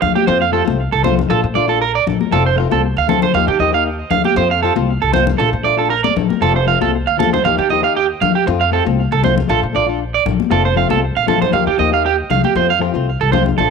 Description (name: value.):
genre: highlife guitar band.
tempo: 117 BPM.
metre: 4/4.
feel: swing 53% on 16ths.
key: F mixolydian.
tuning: A4 = 440 Hz.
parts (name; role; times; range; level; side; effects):
electric guitar at the edge of break-up; arpeggios; 0.0-13.7 s; G4 to F5; -16 LUFS; right 11 dB; tape echo.
upright bass; bass; 0.0-13.7 s; F1 to Eb3; -20 LUFS; left 1 dB; none.
congas; percussion; 0.0-13.6 s; none; -20 LUFS; left 13 dB; none.
flamenco guitar; accompaniment; 0.3-13.7 s; F3 to G4; -20 LUFS; left 14 dB; none.
room: light reverb, studio reverb.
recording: 1960s-style stereo with parts hard left and right.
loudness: -13 LUFS.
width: side -5 dB against mid.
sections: 0.0-13.7 A section.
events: none.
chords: 0.3 F; 1.3 Bbmaj7; 2.3 F; 3.3 Ebadd9; 4.4 F; 5.4 Bbmaj7; 6.4 F; 7.4 Ebadd9; 8.5 F; 9.5 Bbmaj7; 10.5 F; 11.5 Ebadd9; 12.6 F.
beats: | 0.27 0.78 1.30 1.81 | 2.32 2.83 3.35 3.86 | 4.37 4.88 5.39 5.91 | 6.42 6.93 7.44 7.96 | 8.47 8.98 9.49 10.00 | 10.51 11.03 11.54 12.05 | 12.56 13.07 13.59.